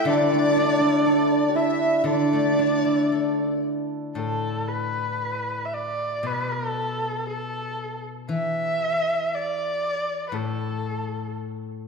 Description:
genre	chinese traditional, Chinese chamber ensemble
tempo	59 BPM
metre	4/4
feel	rubato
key	D zhi mode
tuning	A4 = 439 Hz
part	dark erhu	melody	0.0-11.4 s	A4 to E5	-26 LUFS	right 1 dB	none
part	hammered dulcimer	second line	0.0-5.8 s	D4 to A4	-25 LUFS	right 8 dB	none
part	mellow dizi	second line	0.0-3.6 s	D5 to E5	-27 LUFS	left 3 dB	none
part	steel-string zither	accompaniment	0.0-11.9 s	A2 to A4	-27 LUFS	left 4 dB	none
room	wet scoring stage reverb, RT60 1.8 s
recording	minimal, uncompressed stereo recording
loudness	-22 LUFS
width	side -4 dB against mid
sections	0.0-4.2 A section; 4.2-11.9 B section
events	none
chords	none

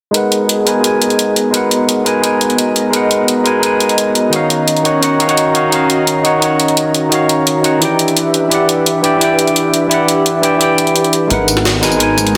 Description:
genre	liquid drum and bass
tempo	172 BPM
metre	4/4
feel	straight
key	G# minor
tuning	A4 = 440 Hz
part	barky tine electric piano	accompaniment	0.1-12.4 s	D#3 to G#5	-16 LUFS	equal	low-pass filter, delay
part	airy breathy pad	sustained chords	0.1-12.4 s	G#3 to A#5	-19 LUFS	equal	chorus, sidechain pumping
part	jungle sampler-style drum kit	drums	0.1-12.4 s	hi-hat, snare drum, tambourine	-18 LUFS	equal	none
part	swelling detuned saw bass	bass	11.3-12.4 s	G#1	-21 LUFS	equal	none
part	electronic kick drum	drums	11.3-12.2 s	none	-26 LUFS	equal	none
room	wet lush hall reverb, RT60 1.9 s, digital ambience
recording	dense, heavily limited modern master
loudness	-13 LUFS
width	mono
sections	0.1-11.3 A section; 11.3-12.4 B section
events	filter sweep on tine electric piano 0.1-11.3; build-up 11.3-12.4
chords	0.1 G#m7; 4.3 D#m7; 7.8 Em7; 11.3 G#m7

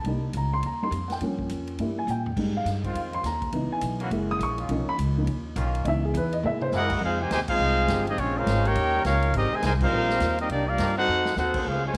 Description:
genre	jazz, big band swing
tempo	207 BPM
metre	4/4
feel	swing 62% on 8ths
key	F minor from 7.0 s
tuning	A4 = 438 Hz
part	dark baby grand piano	accompaniment	0.0-6.9 s	Fb3 to Eb6	-31 LUFS	equal	none
part	upright bass	bass	0.0-12.0 s	Gb1 to Bb2	-30 LUFS	equal	none
part	vintage drum kit	drums	0.0-12.0 s	crash cymbal, hi-hat, kick drum, ride cymbal, snare drum, toms	-39 LUFS	equal	none
part	clear trombone section	sustained chords	2.8-11.9 s	Eb3 to C5	-39 LUFS	equal	none
part	warm trumpet section	melody	6.7-12.0 s	Ab3 to Ab5	-27 LUFS	equal	none
part	mellow trombone section	second line	6.7-11.9 s	C3 to G4	-32 LUFS	equal	none
room	moderate echo chamber reverb, RT60 1.5 s, small room ambience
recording	none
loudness	-26 LUFS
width	mono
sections	0.0-7.0 A section; 7.0-12.0 B section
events	grand piano solo 0.0-7.0; drum fill 2.1, 6.4, 11.1; band accent 7.5, 9.8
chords	0.1 Cm7; 1.2 Gm7b5; 1.8 Gm6; 2.4 Fm7; 3.5 Dbm7; 4.1 Gb7; 4.7 Bmaj9#11; 5.9 Dbm7; 6.4 C7alt; 7.0 Fm9; 8.2 Bbm9; 8.8 Eb7; 9.3 Abmaj9; 10.5 Cm9; 11.1 F7b9

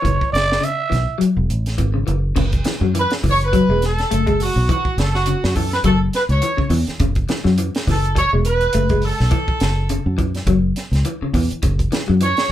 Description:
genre	afrobeat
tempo	104 BPM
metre	4/4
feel	swing 56% on 16ths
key	F# minor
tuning	A4 = 439 Hz
part	growling trumpet	melody	0.0-1.2 s	C#5 to E5	-19 LUFS	right 3 dB	none
part	electric guitar at the edge of break-up	arpeggios	0.0-12.5 s	C#3 to A3	-22 LUFS	left 3 dB	none
part	fingered electric bass	bass	0.0-12.3 s	E1 to F#2	-19 LUFS	equal	none
part	compact cocktail drum kit	drums	0.0-12.5 s	crash cymbal, hi-hat, kick drum, snare drum	-23 LUFS	right 1 dB	none
part	warm horn section	melody	3.0-12.5 s	F#4 to C#5	-20 LUFS	right 2 dB	none
room	wet studio ambience, RT60 0.5 s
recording	band playing live in one room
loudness	-16 LUFS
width	side -12 dB against mid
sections	0.0-2.4 A section; 2.4-12.5 B section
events	trumpet solo 0.0-2.4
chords	0.0 F#7(no3); 2.4 F#m7

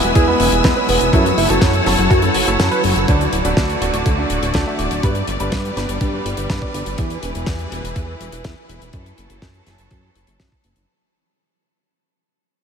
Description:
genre	italo disco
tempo	123 BPM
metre	4/4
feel	straight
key	unclear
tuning	A4 = 440 Hz
part	wide unison lead	melody	0.0-3.1 s	F#3 to B4	-20 LUFS	equal	wide subtle chorus, analog delay
part	clear symphonic string section	sustained chords	0.0-10.9 s	D3 to E6	-23 LUFS	left 1 dB	none
part	warm grand piano	stabs	0.0-7.0 s	F#3 to E5	-23 LUFS	right 2 dB	analog delay
part	chorused synth bass	bass	0.0-10.9 s	D1 to G2	-22 LUFS	equal	none
part	damped 70s drum kit	drums	0.0-10.9 s	hi-hat, snare drum	-24 LUFS	left 2 dB	small room ambience
part	electronic kick drum	drums	0.2-10.6 s	none	-19 LUFS	equal	overdrive, small room ambience
room	wet huge ambient reverb, RT60 8.4 s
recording	dreamy mix soaked in reverb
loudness	-15 LUFS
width	side -7 dB against mid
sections	0.0-3.1 A section; 3.1-10.9 B section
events	kick drops out 2.6-3.1; fade-out 3.1-10.9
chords	0.0 E; 1.1 F#m7; 3.1 D; 5.0 G; 7.0 E; 8.9 F#m7

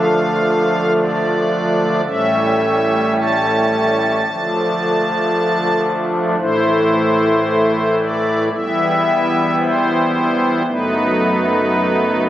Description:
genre	classical, chorale-style piece for pipe organ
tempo	56 BPM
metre	4/4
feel	rubato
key	E minor from 6.4 s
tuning	A4 = 440 Hz
part	pipe organ, strings celeste	solo	0.0-12.3 s	E1 to A5	-14 LUFS	equal	none
room	wet scoring stage reverb, RT60 1.5 s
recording	recorded on a phone in the room, studio ambience, compression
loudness	-14 LUFS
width	side -12 dB against mid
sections	0.0-12.3 A section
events	none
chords	0.0 Dm; 2.0 A7; 4.3 Dm; 6.4 Am; 8.5 Em; 10.7 B7/F#

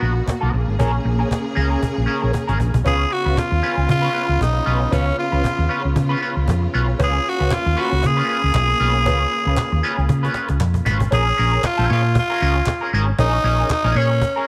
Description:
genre	disco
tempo	116 BPM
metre	4/4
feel	swing 56% on 16ths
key	unclear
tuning	A4 = 438 Hz
part	clean electric guitar	accompaniment	0.0-14.5 s	Cb4 to Db5	-27 LUFS	equal	wah, spring reverb
part	clear symphonic string section	sustained chords	0.0-11.1 s	Cb3 to Ab4	-30 LUFS	equal	none
part	hollow-body short-scale fingered electric bass	bass	0.0-14.2 s	Ab1 to Db3	-21 LUFS	equal	none
part	cajon	drums	0.2-14.4 s	none	-25 LUFS	equal	none
part	growling tenor saxophone	melody	2.9-14.5 s	Db4 to Ab4	-23 LUFS	equal	none
part	group handclap	percussion	7.5-13.8 s	none	-36 LUFS	equal	none
room	light reverb, studio reverb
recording	none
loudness	-19 LUFS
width	mono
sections	0.0-2.9 A section; 2.9-11.1 B section; 11.1-14.5 C section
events	drum fill 2.3-2.9, 10.1-11.1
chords	0.0 Abm9 (rootless); 0.5 Bbm7; 2.9 Db7; 11.1 Bbm7

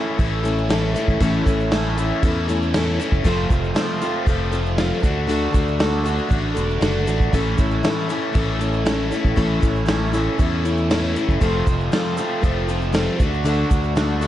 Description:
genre	folk rock and heartland rock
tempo	118 BPM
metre	4/4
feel	straight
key	unclear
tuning	A4 = 440 Hz
part	picked plugged-in steel-string acoustic guitar	accompaniment	0.0-14.3 s	A2 to A4	-24 LUFS	left 2 dB	none
part	crunchy overdriven guitar	riff	0.0-14.3 s	F2 to F#4	-25 LUFS	right 1 dB	phaser
part	fingered electric bass	bass	0.2-14.3 s	E1 to E2	-23 LUFS	equal	none
part	vintage drum kit	drums	0.2-14.3 s	crash cymbal, kick drum, snare drum	-23 LUFS	equal	none
part	egg shaker	percussion	0.2-14.3 s	none	-46 LUFS	right 11 dB	none
room	light reverb, small room ambience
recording	dark, warm production, nothing above 10.5 kHz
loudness	-18 LUFS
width	side -12 dB against mid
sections	0.0-14.3 A section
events	none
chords	0.0 A; 3.2 F; 5.0 D; 7.3 A; 11.4 F; 13.2 D

